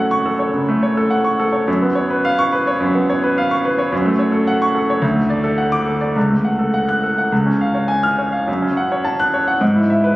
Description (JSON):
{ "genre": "classical, virtuoso piano study", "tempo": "106 BPM", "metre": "4/4", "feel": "rubato", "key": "F# minor", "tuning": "A4 = 442 Hz", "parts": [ { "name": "clear grand piano", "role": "solo", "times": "0.0-10.2 s", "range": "C#2 to F#6", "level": "-15 LUFS", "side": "equal", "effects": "none" } ], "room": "wet concert hall reverb, RT60 1.9 s", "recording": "recorded on a phone in the room, club ambience", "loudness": "-15 LUFS", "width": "side -18 dB against mid", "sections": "0.0-10.2 A section", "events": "none", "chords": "0.0 F#m; 1.7 C#7/F#; 3.9 F#m; 5.0 D; 6.2 F#m/C#; 7.3 C#; 8.5 F#m; 9.6 E/G#" }